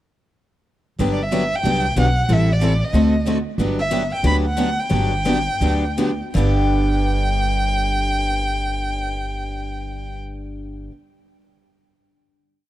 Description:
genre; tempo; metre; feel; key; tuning
acoustic string swing (jazz manouche); 157-185 BPM; 4/4; swing 59% on 8ths; G major; A4 = 440 Hz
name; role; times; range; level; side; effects
picked steel-string acoustic guitar; accompaniment; 1.0-10.9 s; G2 to A4; -24 LUFS; left 4 dB; none
picked steel-string acoustic guitar; accompaniment; 1.0-10.9 s; G2 to A4; -27 LUFS; right 6 dB; none
upright bass; bass; 1.0-10.9 s; G1 to D2; -21 LUFS; equal; none
dark violin; melody; 1.1-10.2 s; D5 to B5; -23 LUFS; equal; none
room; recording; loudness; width
light reverb; dry, close 1970s-style studio recording; -17 LUFS; side -14 dB against mid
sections
1.0-6.3 A section; 6.3-9.4 final chord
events
slowing down 3.6-6.3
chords
1.0 Gmaj7; 2.3 Am7; 2.9 D7b9; 3.6 Gmaj7; 6.3 G

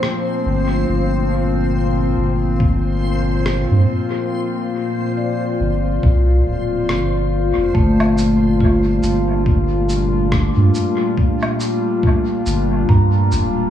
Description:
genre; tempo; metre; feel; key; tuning
ambient dub; 70 BPM; 4/4; swing 58% on 16ths; G minor; A4 = 439 Hz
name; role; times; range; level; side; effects
warbly tape-like pad; sustained chords; 0.0-13.7 s; Bb2 to F4; -20 LUFS; left 2 dB; chorus, built-in reverb
vibraphone with medium mallets; arpeggios; 0.0-13.7 s; A3 to Bb5; -23 LUFS; left 1 dB; tape echo
electronic rim click, woodblock and cabasa; drums; 0.0-13.5 s; none; -27 LUFS; left 1 dB; dub echo
backwards swelling texture; texture; 0.0-7.8 s; C5; -30 LUFS; equal; built-in reverb
soft dub sub bass; bass; 0.5-13.7 s; D1 to G2; -17 LUFS; equal; none
electronic kick drum; drums; 2.6-13.1 s; none; -17 LUFS; equal; none
room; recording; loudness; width
light reverb, digital ambience; echo-heavy mix, studio reverb; -15 LUFS; side -10 dB against mid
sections
0.0-7.7 A section; 7.7-13.7 B section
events
none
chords
0.0 Gm7

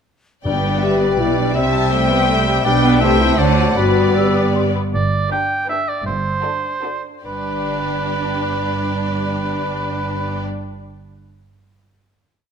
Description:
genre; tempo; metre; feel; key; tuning
quick classical-period movement for symphony orchestra; 142-166 BPM; 3/4; rubato; G major; A4 = 440 Hz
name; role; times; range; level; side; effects
clear oboe; second line; 0.4-10.4 s; B4 to G5; -23 LUFS; right 2 dB; none
mellow hollow concert flute; second line; 0.4-4.8 s; G5 to E6; -27 LUFS; left 2 dB; none
warm clarinet; second line; 0.4-4.7 s; B4 to C5; -26 LUFS; left 3 dB; none
rich studio viola section; accompaniment; 0.4-10.4 s; G3 to D4; -24 LUFS; right 1 dB; none
rich studio double bass section; bass; 0.4-10.4 s; G1 to D2; -24 LUFS; right 4 dB; none
warm studio violin section; melody; 0.5-10.4 s; A4 to A5; -25 LUFS; left 3 dB; none
rich studio violin section; second line; 0.5-10.4 s; F#4 to G5; -28 LUFS; left 2 dB; none
warm bassoon; accompaniment; 0.5-4.7 s; E3 to G3; -26 LUFS; right 1 dB; none
dark French horn section; sustained chords; 0.5-4.7 s; C4 to G4; -20 LUFS; left 6 dB; none
clear studio cello section; bass; 0.5-10.4 s; G2 to D3; -23 LUFS; right 2 dB; none
timpani; percussion; 0.5-1.0 s; G2; -28 LUFS; equal; none
room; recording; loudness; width
moderate scoring stage reverb, RT60 1.6 s; none; -15 LUFS; side -7 dB against mid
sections
0.5-4.9 A section; 4.9-7.2 coda; 7.2-9.7 final chord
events
slowing down 4.3-7.2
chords
0.5 G; 1.6 C; 2.7 G/B; 3.0 Am7/C; 3.4 D7; 3.8 G

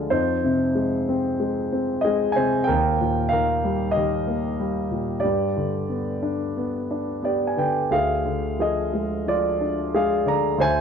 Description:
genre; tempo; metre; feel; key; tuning
classical, lyrical solo piano; 92 BPM; 4/4; rubato; unclear; A4 = 439 Hz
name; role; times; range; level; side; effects
dark concert grand piano; solo; 0.0-10.8 s; D2 to Bb5; -21 LUFS; equal; none
room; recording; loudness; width
moderate plate reverb, RT60 2.7 s; none; -21 LUFS; side -7 dB against mid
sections
0.0-10.8 A section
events
none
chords
0.1 Fm7; 2.7 Ebadd9; 5.2 G; 7.9 Ddim

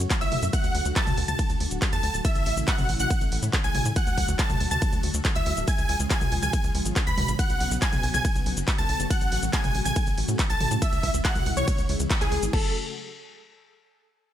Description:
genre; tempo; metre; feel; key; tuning
uplifting trance; 140 BPM; 4/4; straight; F# minor; A4 = 440 Hz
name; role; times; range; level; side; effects
analog string pad; sustained chords; 0.0-12.7 s; C#3 to F#4; -34 LUFS; left 1 dB; ensemble chorus, sidechain pumping
tight sequencer bass; bass; 0.0-12.7 s; D1 to A2; -29 LUFS; equal; sidechain pumping
punchy analog drum machine; drums; 0.0-12.6 s; crash cymbal, handclaps, hi-hat, ride cymbal, shaker, toms; -30 LUFS; equal; sidechain pumping on hats, sidechain pumping on toms, sidechain pumping on perc, sidechain pumping on cymbals
electronic kick drum; drums; 0.1-12.6 s; none; -26 LUFS; equal; none
dense compressed supersaw; melody; 0.2-12.7 s; G#4 to B5; -30 LUFS; equal; sidechain pumping, ping-pong delay
wide unison pluck; second line; 0.2-12.7 s; G#5 to B6; -35 LUFS; equal; sidechain pumping, ping-pong delay
room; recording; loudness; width
digital ambience; none; -22 LUFS; side -11 dB against mid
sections
0.0-12.5 A section; 12.5-14.2 B section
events
drop 0.0-12.5; band accent 12.1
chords
0.0 F#m; 0.5 D; 2.2 A; 4.0 D; 5.7 C#; 7.4 Bsus2; 9.1 F#m/A; 10.8 C#m; 12.5 F#m

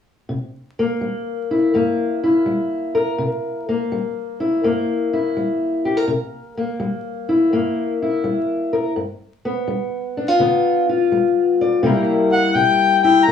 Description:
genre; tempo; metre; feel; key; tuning
acoustic country blues, solo or duo; 83 BPM; 4/4; swing 67% on 8ths; C mixolydian; A4 = 440 Hz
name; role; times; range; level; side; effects
fingerpicked steel-string acoustic guitar; accompaniment; 0.3-13.3 s; G2 to D5; -18 LUFS; left 2 dB; none
warm harmonica; melody; 12.3-13.3 s; F#5 to Bb5; -14 LUFS; left 6 dB; plate reverb
room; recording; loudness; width
wet studio ambience, RT60 0.5 s; worn, warbling old tape, cassette tape, vinyl crackle, warbly pitch drift, small room ambience; -17 LUFS; side -8 dB against mid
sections
0.3-11.8 A section; 11.8-13.3 B section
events
none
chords
0.3 C7; 9.0 G7; 11.8 C7

